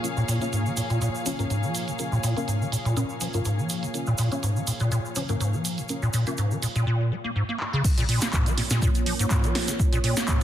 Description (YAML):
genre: acid house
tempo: 123 BPM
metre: 4/4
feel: swing 54% on 16ths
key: Bb minor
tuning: A4 = 440 Hz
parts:
  - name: dark analog pad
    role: sustained chords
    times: 0.0-10.4 s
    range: Bb3 to F5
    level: -34 LUFS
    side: right 3 dB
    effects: chorus, sidechain pumping
  - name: deep mellow chord stab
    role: stabs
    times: 0.0-6.4 s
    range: Db4 to Db5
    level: -34 LUFS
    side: left 2 dB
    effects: chorus, phaser, ping-pong delay
  - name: punchy analog drum machine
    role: drums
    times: 0.0-10.4 s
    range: crash cymbal, handclaps, hi-hat, snare drum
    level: -32 LUFS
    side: right 1 dB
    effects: low-pass filter on hats, low-pass filter on snare, low-pass filter on cymbals, low-pass filter on room
  - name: egg shaker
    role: percussion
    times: 0.0-10.4 s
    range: none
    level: -34 LUFS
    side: right 3 dB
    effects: none
  - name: muted studio string section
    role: texture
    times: 0.0-6.9 s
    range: Bb3 to F5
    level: -34 LUFS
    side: left 2 dB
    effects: sidechain pumping
  - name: acid bass, square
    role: riff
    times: 0.2-10.4 s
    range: Ab2 to Bb3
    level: -26 LUFS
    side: equal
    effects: ensemble chorus, ping-pong delay
  - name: electronic kick drum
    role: drums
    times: 7.8-10.4 s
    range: none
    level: -24 LUFS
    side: equal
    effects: none
room: light reverb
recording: dense, heavily limited modern master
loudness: -23 LUFS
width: side -11 dB against mid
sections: 0.0-7.8 A section; 7.8-10.4 B section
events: filter sweep on acid bass 0.0-7.8; filter sweep on analog synth pad 0.0-7.8; drum fill 7.6; drop 7.8-10.4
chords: 0.0 Bbm